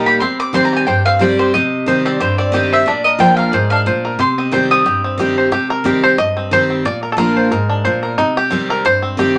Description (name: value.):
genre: bluegrass.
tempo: 181 BPM.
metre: 4/4.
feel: swing 55% on 8ths.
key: C minor.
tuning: A4 = 439 Hz.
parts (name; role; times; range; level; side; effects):
bluegrass banjo; melody; 0.0-9.4 s; G3 to Eb5; -20 LUFS; equal; none.
mandolin; melody; 0.0-5.4 s; C5 to Eb6; -18 LUFS; equal; none.
picked steel-string acoustic guitar; accompaniment; 0.0-9.4 s; G2 to G4; -19 LUFS; equal; none.
room: moderate studio reverb, RT60 0.5 s.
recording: none.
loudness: -15 LUFS.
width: mono.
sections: 0.0-5.5 A section; 5.5-9.4 B section.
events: five-string banjo solo 5.5-9.4.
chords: 0.2 Cm; 2.9 Bb; 4.2 Cm; 6.9 Bb; 8.2 Cm.